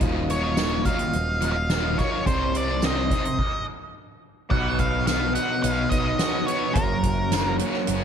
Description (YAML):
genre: psychedelic rock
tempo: 107 BPM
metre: 4/4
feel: straight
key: unclear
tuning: A4 = 442 Hz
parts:
  - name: combo organ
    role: sustained chords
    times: 0.0-8.0 s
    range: Gb3 to Eb5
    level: -34 LUFS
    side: right 4 dB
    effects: none
  - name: crunchy overdriven guitar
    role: riff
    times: 0.0-8.0 s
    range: Eb2 to F#4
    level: -27 LUFS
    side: equal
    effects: harmonic tremolo
  - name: growling picked electric bass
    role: bass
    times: 0.0-8.0 s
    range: Eb1 to C2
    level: -27 LUFS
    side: equal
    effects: overdrive
  - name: soft-mallet drum kit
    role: drums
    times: 0.0-8.0 s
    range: crash cymbal, hi-hat, kick drum, snare drum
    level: -27 LUFS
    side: equal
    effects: none
  - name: octave-fuzz lead guitar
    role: melody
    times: 0.3-7.6 s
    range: Bb4 to F#5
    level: -27 LUFS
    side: equal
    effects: distortion, analog delay
  - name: tambourine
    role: percussion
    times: 0.6-7.5 s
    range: none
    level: -38 LUFS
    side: right 16 dB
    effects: none
room: light reverb, small room reverb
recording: none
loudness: -21 LUFS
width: side -8 dB against mid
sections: 0.0-4.5 A section; 4.5-8.0 B section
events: stop 3.4-4.5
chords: 0.0 Ebmadd9; 2.3 Cmadd9; 4.5 B; 6.8 Gb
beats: | 0.02 0.58 1.14 1.70 | 2.27 2.83 3.39 3.95 | 4.51 5.08 5.64 6.20 | 6.76 7.32 7.88